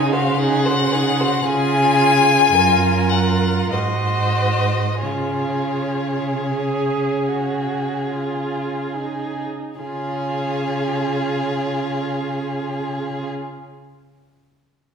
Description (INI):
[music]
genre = classical, slow romantic movement for string quartet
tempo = 34-57 BPM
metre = 3/4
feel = rubato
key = Db major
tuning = A4 = 440 Hz
[part]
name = rich violin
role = melody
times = 0.0-13.3 s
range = Db5 to Ab5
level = -22 LUFS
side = left 6 dB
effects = none
[part]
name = rich violin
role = second line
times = 0.0-13.3 s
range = Ab4 to C5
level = -25 LUFS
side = equal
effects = none
[part]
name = rich viola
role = accompaniment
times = 0.0-13.3 s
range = Eb4 to Ab4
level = -26 LUFS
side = right 2 dB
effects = none
[part]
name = rich cello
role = bass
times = 0.0-13.3 s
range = Gb2 to Db3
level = -22 LUFS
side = right 2 dB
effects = none
[sound]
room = wet recital hall reverb, RT60 1.6 s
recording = heard from further back in the room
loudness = -18 LUFS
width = side -6 dB against mid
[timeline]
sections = 0.0-9.8 A section; 9.8-14.9 B section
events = slowing down 0.0-9.8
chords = 0.0 Ab7/Db; 1.5 Db; 2.5 Gbmaj7; 3.7 Ab7; 5.0 Db